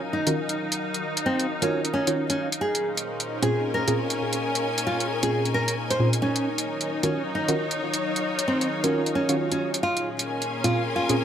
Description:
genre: UK garage, two-step garage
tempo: 133 BPM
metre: 4/4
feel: swing 60% on 16ths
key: Eb dorian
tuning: A4 = 440 Hz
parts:
  - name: soft string machine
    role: sustained chords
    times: 0.0-11.2 s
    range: Bb2 to C6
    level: -33 LUFS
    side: left 1 dB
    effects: phaser, ensemble chorus
  - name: clear studio string section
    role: texture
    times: 0.0-11.2 s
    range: Db4 to Ab5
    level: -30 LUFS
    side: left 2 dB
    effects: none
  - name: nylon-string guitar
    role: melody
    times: 0.1-11.2 s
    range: C4 to C5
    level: -27 LUFS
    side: equal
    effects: digital delay
  - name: deep mellow chord stab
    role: stabs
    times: 0.3-11.1 s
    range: Bb2 to Db5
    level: -27 LUFS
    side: right 1 dB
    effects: chorus, cassette tape, digital delay
  - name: electronic hi-hat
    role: drums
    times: 0.3-11.2 s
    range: none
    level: -28 LUFS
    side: equal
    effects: none
room: moderate lush hall reverb, RT60 1.7 s, small room ambience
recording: none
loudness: -23 LUFS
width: side -9 dB against mid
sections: 0.0-11.2 A section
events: none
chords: 0.0 Ebm7; 2.6 Bbm7; 6.2 Ebm7; 9.8 Bbm7

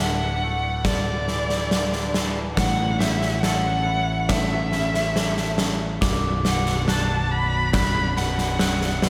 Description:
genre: post-rock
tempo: 70 BPM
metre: 4/4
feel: straight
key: B minor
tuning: A4 = 440 Hz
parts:
  - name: rich violin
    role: melody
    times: 0.0-9.0 s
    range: D5 to B5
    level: -28 LUFS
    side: equal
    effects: slapback echo, digital delay
  - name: clear symphonic string section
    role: sustained chords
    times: 0.0-9.1 s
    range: F#3 to D5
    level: -40 LUFS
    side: equal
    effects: none
  - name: twangy electric guitar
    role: arpeggios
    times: 0.0-9.1 s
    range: B1 to A4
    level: -34 LUFS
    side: equal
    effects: slapback echo, digital delay
  - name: growling picked electric bass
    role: bass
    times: 0.0-9.1 s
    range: B0 to A1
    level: -28 LUFS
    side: equal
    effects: overdrive
  - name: big rock drum kit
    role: drums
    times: 0.8-9.1 s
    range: kick drum, snare drum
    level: -26 LUFS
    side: equal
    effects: none
  - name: glockenspiel with soft plastic mallets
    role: arpeggios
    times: 6.0-9.1 s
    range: D6 to F#6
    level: -36 LUFS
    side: equal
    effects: slapback echo, digital delay
room: moderate lush hall reverb, RT60 2.7 s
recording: big arena sound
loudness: -23 LUFS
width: mono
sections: 0.0-9.1 A section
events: none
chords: 0.0 Dadd9; 2.6 A; 6.0 Bm

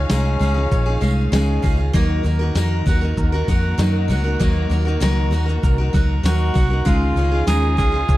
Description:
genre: acoustic pop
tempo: 98 BPM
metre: 4/4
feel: straight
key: unclear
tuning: A4 = 441 Hz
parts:
  - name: warm tenor saxophone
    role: melody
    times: 0.0-1.3, 6.3-8.2 s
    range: Db4 to Ab4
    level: -24 LUFS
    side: equal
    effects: none
  - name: picked steel-string acoustic guitar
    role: accompaniment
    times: 0.0-8.2 s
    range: Db3 to Bb4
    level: -23 LUFS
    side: equal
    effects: none
  - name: warm symphonic string section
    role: sustained chords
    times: 0.0-8.2 s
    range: Eb3 to F5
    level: -31 LUFS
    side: left 2 dB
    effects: none
  - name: bowl-back mandolin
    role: arpeggios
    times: 0.0-8.2 s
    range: Ab3 to Gb5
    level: -32 LUFS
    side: right 4 dB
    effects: none
  - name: vintage muted fingered electric bass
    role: bass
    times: 0.0-8.2 s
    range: Bb1 to Gb2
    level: -19 LUFS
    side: equal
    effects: none
  - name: dusty soul sampler-style drum kit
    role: drums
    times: 0.1-8.2 s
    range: kick drum, shaker, snare drum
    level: -20 LUFS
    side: equal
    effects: none
  - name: tambourine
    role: percussion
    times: 0.1-7.9 s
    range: none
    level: -41 LUFS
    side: left 9 dB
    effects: none
room: small room ambience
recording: dry, close 1970s-style studio recording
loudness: -16 LUFS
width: side -16 dB against mid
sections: 0.0-8.2 A section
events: none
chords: 0.0 Dbadd9; 1.9 Ebm; 6.9 Dbadd9

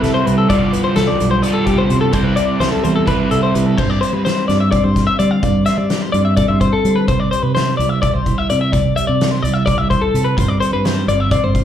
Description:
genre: math rock and midwest emo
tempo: 255 BPM (eighths)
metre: 7/8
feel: straight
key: unclear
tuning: A4 = 440 Hz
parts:
  - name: mellow electric guitar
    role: accompaniment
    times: 0.0-11.6 s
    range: C3 to E5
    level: -21 LUFS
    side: right 6 dB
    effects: slapback echo
  - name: twelve-string electric guitar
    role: arpeggios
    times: 0.0-11.6 s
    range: G4 to F5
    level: -18 LUFS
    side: left 5 dB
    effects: slapback echo
  - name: overdriven semi-hollow guitar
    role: riff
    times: 0.0-3.8 s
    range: G2 to F4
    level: -19 LUFS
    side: right 2 dB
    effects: spring reverb, slapback echo
  - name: fingered electric bass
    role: bass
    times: 0.0-11.6 s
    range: G1 to G3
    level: -18 LUFS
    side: equal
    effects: none
  - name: loose indie drum kit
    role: drums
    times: 0.0-11.6 s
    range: crash cymbal, hi-hat, kick drum, snare drum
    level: -21 LUFS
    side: equal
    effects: none
room: light reverb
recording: live gig heard through the venue's PA, club reverb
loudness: -13 LUFS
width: side -10 dB against mid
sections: 0.0-3.8 A section; 3.8-11.6 B section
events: none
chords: 0.5 G13; 2.1 C69; 3.8 G7sus4; 7.1 Cmaj9; 10.4 G7sus4

